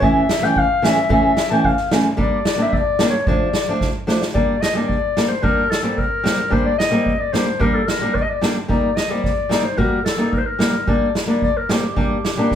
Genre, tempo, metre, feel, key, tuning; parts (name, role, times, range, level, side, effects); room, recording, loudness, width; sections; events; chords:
klezmer; 111 BPM; 2/4; straight; D harmonic minor, G minor from 4.3 s; A4 = 441 Hz
warm clarinet; melody; 0.0-12.6 s; G4 to A5; -21 LUFS; left 3 dB
flamenco guitar; accompaniment; 0.0-12.6 s; E3 to F#4; -19 LUFS; equal
street-band drum kit; drums; 0.0-12.6 s; kick drum, snare drum; -21 LUFS; right 2 dB
wet studio reverb, RT60 0.6 s; heard from further back in the room; -16 LUFS; side -9 dB against mid
0.0-4.3 A section; 4.3-12.6 B section
drum fill 3.8-4.3
0.0 A; 2.2 Gm; 3.3 Dm; 4.3 Gm; 8.7 Eb; 10.9 Gm